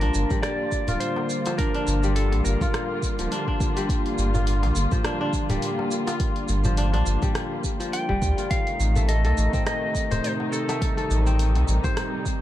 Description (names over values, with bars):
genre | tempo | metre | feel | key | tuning
organic downtempo | 104 BPM | 4/4 | swing 56% on 16ths | G minor | A4 = 440 Hz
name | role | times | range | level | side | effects
clean lap steel guitar | melody | 0.0-3.3, 7.9-12.2 s | A4 to G5 | -30 LUFS | equal | ping-pong delay
muted studio string section | sustained chords | 0.0-12.4 s | C3 to F4 | -29 LUFS | equal | sidechain pumping
kora | arpeggios | 0.0-12.4 s | F3 to C5 | -29 LUFS | left 2 dB | ping-pong delay
warm sub bass | bass | 0.0-11.8 s | D1 to D2 | -22 LUFS | equal | tube saturation, sidechain pumping
deep house drum kit | drums | 0.0-12.4 s | hi-hat, rim click, shaker | -34 LUFS | right 1 dB | none
darbuka | percussion | 0.0-11.9 s | none | -32 LUFS | equal | none
electronic kick drum | drums | 0.3-12.4 s | none | -26 LUFS | equal | none
room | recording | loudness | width
light reverb | dark, warm production | -21 LUFS | side -13 dB against mid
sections
0.0-12.4 A section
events
none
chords
0.0 Gm7; 8.5 Adim